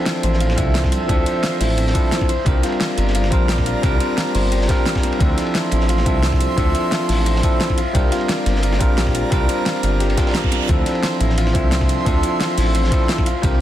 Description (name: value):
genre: liquid drum and bass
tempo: 175 BPM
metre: 4/4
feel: swing 53% on 16ths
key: D minor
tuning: A4 = 440 Hz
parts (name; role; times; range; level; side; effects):
- bell-like tine electric piano; accompaniment; 0.0-13.6 s; F3 to E5; -22 LUFS; right 1 dB; dub echo
- airy breathy pad; sustained chords; 0.5-13.6 s; C5 to C6; -28 LUFS; right 1 dB; chorus, sidechain pumping
- concert harp; arpeggios; 0.0-13.6 s; C4 to C5; -26 LUFS; left 4 dB; tape echo
- crunchy breakbeat drum kit; drums; 0.1-13.5 s; hi-hat, ride cymbal, snare drum; -30 LUFS; right 1 dB; high-pass filter on cymbals, high-pass filter on hats, high-pass filter on snare, high-pass filter on room
- pop drum kit; drums; 0.1-13.5 s; hi-hat, snare drum; -25 LUFS; equal; none
- dark detuned saw bass; bass; 0.2-13.6 s; G1 to D2; -19 LUFS; equal; none
- electronic kick drum; drums; 0.6-13.5 s; none; -19 LUFS; equal; none
- reverse cymbal; sound effects; 10.2-10.7 s; none; -31 LUFS; right 8 dB; none
room: small room ambience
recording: dense, heavily limited modern master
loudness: -16 LUFS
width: side -12 dB against mid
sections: 0.0-13.6 A section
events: reverse cymbal 10.2-10.7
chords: 0.0 Dm9; 2.3 C9sus4; 5.2 Dm9; 7.8 C9sus4; 10.7 Dm9